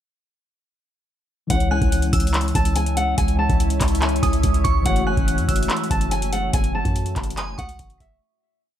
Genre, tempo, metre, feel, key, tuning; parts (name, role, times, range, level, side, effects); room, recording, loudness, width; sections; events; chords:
hip hop, trap; 143 BPM; 4/4; half-time; C# minor; A4 = 438 Hz
fingerpicked steel-string acoustic guitar; melody; 1.5-8.2 s; E5 to A5; -27 LUFS; equal; low-pass filter, ping-pong delay
mellow tine electric piano; accompaniment; 1.5-8.2 s; E3 to C#5; -28 LUFS; left 4 dB; ensemble chorus, low-pass filter
deep dark ambient pad; sustained chords; 2.5-8.2 s; G#3 to E5; -28 LUFS; equal; chorus, built-in reverb
warm 808-style bass; bass; 1.5-8.2 s; F#1 to F#2; -23 LUFS; equal
booming analog drum machine; drums; 1.5-8.2 s; handclaps, hi-hat, kick drum; -22 LUFS; equal
glassy synth bell; second line; 1.7-8.2 s; C#6 to F#6; -29 LUFS; right 6 dB; chorus, phaser, ping-pong delay
digital ambience; -18 LUFS; side -11 dB against mid
1.5-8.2 hook
fade-out 6.5-8.2
1.5 C#m; 4.9 F#m7